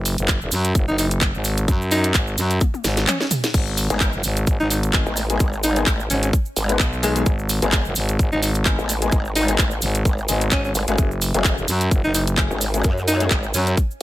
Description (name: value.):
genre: bass house.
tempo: 129 BPM.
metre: 4/4.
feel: swing 55% on 16ths.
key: G# phrygian.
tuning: A4 = 440 Hz.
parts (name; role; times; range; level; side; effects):
growling FM bass; bass; 0.0-13.8 s; E1 to F#2; -22 LUFS; equal; tube saturation, sidechain pumping.
garage drum kit; drums; 0.1-13.9 s; crash cymbal, handclaps, hi-hat, snare drum, toms; -24 LUFS; equal; none.
cabasa; percussion; 0.1-14.0 s; none; -29 LUFS; right 4 dB; none.
electronic kick drum; drums; 0.3-13.9 s; none; -19 LUFS; equal; none.
growling alto saxophone; melody; 0.9-13.7 s; G#3 to D#4; -25 LUFS; equal; tape echo.
warm baby grand piano; stabs; 3.9-13.3 s; G#3 to B4; -28 LUFS; left 5 dB; sidechain pumping, tape echo.
growl bass; bass; 3.9-13.5 s; F#1 to F#2; -22 LUFS; equal; chorus, sidechain pumping.
room: digital ambience.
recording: none.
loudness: -17 LUFS.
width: side -15 dB against mid.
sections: 0.0-14.0 A section.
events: drum fill 2.6-3.5.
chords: 0.0 F#sus2; 3.5 G#m; 11.0 F#madd9.